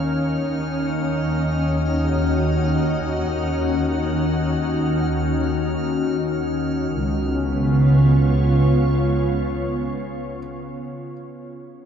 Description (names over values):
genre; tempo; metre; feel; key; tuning
ambient; free time; none; none; Db mixolydian; A4 = 440 Hz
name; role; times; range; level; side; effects
soft additive organ-like pad; sustained chords; 0.0-10.8 s; Db3 to F5; -20 LUFS; equal; ensemble chorus, built-in reverb
felt-muted upright piano; arpeggios; 0.0-11.9 s; Db4 to Bb4; -44 LUFS; equal; none
rich studio double bass section; bass; 0.0-9.9 s; Db2 to Eb2; -26 LUFS; equal; none
drifting glass-harmonics texture; texture; 0.0-7.0 s; F6; -37 LUFS; right 2 dB; chorus, built-in reverb
room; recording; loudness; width
wet cathedral reverb, RT60 5.8 s; dark, warm production; -18 LUFS; side -8 dB against mid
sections
0.0-7.0 A section; 7.0-10.9 B section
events
none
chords
0.0 Ebm7; 7.0 Db7